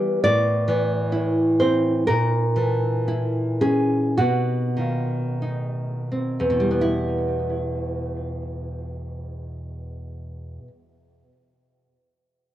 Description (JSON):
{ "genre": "romantic piece for solo classical guitar", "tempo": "40-70 BPM", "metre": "4/4", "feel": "rubato", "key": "E minor", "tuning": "A4 = 440 Hz", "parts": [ { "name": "nylon-string guitar", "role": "solo", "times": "0.0-11.0 s", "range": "E2 to D5", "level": "-21 LUFS", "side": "equal", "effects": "cassette tape, tape echo" } ], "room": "moderate small room reverb, RT60 0.5 s", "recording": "home recording on cassette", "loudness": "-20 LUFS", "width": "side -12 dB against mid", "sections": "0.0-6.8 A section; 6.8-12.0 B section", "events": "slowing down 0.0-6.8", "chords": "0.2 Am; 2.1 A#m7b5; 4.2 B; 6.8 Em", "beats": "0.22 1.11 | 2.06 3.07 4.19 5.42 | 6.83 8.18 9.47 10.77" }